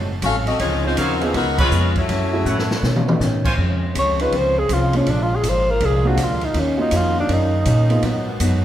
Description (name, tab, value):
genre	jazz, big band swing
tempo	161 BPM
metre	4/4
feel	swing 65% on 8ths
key	Db major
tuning	A4 = 440 Hz
part	archtop guitar, miked and amplified	accompaniment	0.0-8.6 s	Gb2 to Gb4	-26 LUFS	left 2 dB	none
part	upright bass	bass	0.0-8.6 s	Gb1 to Cb3	-21 LUFS	equal	none
part	bright saxophone section	melody	0.2-2.7 s	F3 to F5	-21 LUFS	left 3 dB	none
part	open jazz drum kit	drums	0.2-8.5 s	crash cymbal, hi-hat, kick drum, ride cymbal, snare drum, toms	-26 LUFS	equal	none
part	warm baby grand piano	accompaniment	0.8-8.0 s	Ab3 to Cb5	-26 LUFS	right 2 dB	none
part	clear trumpet section	stabs	1.0-3.5 s	Eb4 to Cb6	-27 LUFS	right 1 dB	none
part	mellow saxophone section	sustained chords	3.6-8.6 s	Db3 to Gb4	-30 LUFS	right 1 dB	none
part	mellow alto saxophone	melody	4.0-8.4 s	Db4 to Db5	-20 LUFS	equal	none
room	wet large studio reverb, RT60 1.4 s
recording	heard from further back in the room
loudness	-16 LUFS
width	side -11 dB against mid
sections	0.0-3.6 A section; 3.6-8.6 B section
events	band accent 1.5; drum fill 2.5-3.2; alto saxophone solo 3.6-8.6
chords	0.0 Ab7b9; 0.6 Dbmaj9; 1.3 Db7; 2.1 Gbm7; 2.8 Cb9; 3.6 Dbmaj7; 5.1 Bb7; 6.5 Ebm7; 8.0 Abm7